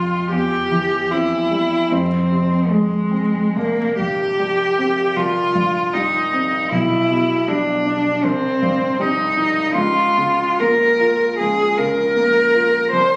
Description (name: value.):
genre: classical, romantic duo for cello and grand piano.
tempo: 65-80 BPM.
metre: 4/4.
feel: rubato.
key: unclear.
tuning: A4 = 442 Hz.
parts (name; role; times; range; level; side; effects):
clear cello; melody; 0.0-13.2 s; Ab3 to C5; -19 LUFS; equal; none.
clear concert grand piano; accompaniment; 0.0-13.2 s; B1 to F4; -24 LUFS; equal; none.
room: moderate recital hall reverb, RT60 1.4 s.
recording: recorded on a phone in the room, studio reverb, vinyl crackle, compression.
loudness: -18 LUFS.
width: mono.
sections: 0.0-13.2 A section.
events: none.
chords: 0.3 C/E; 1.9 Fm; 3.6 Cm; 6.7 G/B; 8.2 Cm; 9.8 Bbm/Db.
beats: | 0.33 1.12 1.92 2.71 | 3.55 4.40 5.17 5.94 | 6.72 7.48 8.24 9.00 | 9.75 10.61 11.40 12.16 | 12.92.